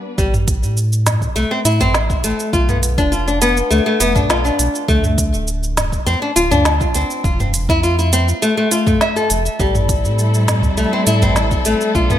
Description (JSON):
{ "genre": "organic downtempo", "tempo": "102 BPM", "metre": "4/4", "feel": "straight", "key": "A minor", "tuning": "A4 = 435 Hz", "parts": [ { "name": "dark studio string section", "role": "sustained chords", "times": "0.0-0.2, 9.6-12.2 s", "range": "F3 to B4", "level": "-22 LUFS", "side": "left 2 dB", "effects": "sidechain pumping" }, { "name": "nylon-string guitar", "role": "arpeggios", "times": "0.2-12.2 s", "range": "G3 to E5", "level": "-17 LUFS", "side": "left 1 dB", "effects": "digital delay" }, { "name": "round analog bass", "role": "bass", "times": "0.2-12.2 s", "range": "D1 to A2", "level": "-18 LUFS", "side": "equal", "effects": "sidechain pumping" }, { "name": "electronic kick drum", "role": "drums", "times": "0.2-12.1 s", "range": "none", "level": "-20 LUFS", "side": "equal", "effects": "none" }, { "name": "organic electronic drum kit", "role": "drums", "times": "0.2-12.2 s", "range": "hi-hat, shaker, snare drum, toms", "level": "-21 LUFS", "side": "right 1 dB", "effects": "none" }, { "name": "bronze singing bowl", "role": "texture", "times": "9.6-12.2 s", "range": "D5", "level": "-28 LUFS", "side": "left 9 dB", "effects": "none" }, { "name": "udu", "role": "percussion", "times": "10.6-11.3 s", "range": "none", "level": "-23 LUFS", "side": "right 1 dB", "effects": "none" } ], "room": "moderate plate reverb, RT60 2.1 s", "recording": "bright 1980s-style digital production", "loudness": "-14 LUFS", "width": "side -11 dB against mid", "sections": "0.2-12.2 A section", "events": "break 0.0", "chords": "0.2 Am; 2.5 Bdim; 4.9 D7(no3); 7.2 Fmaj7; 9.6 Am7" }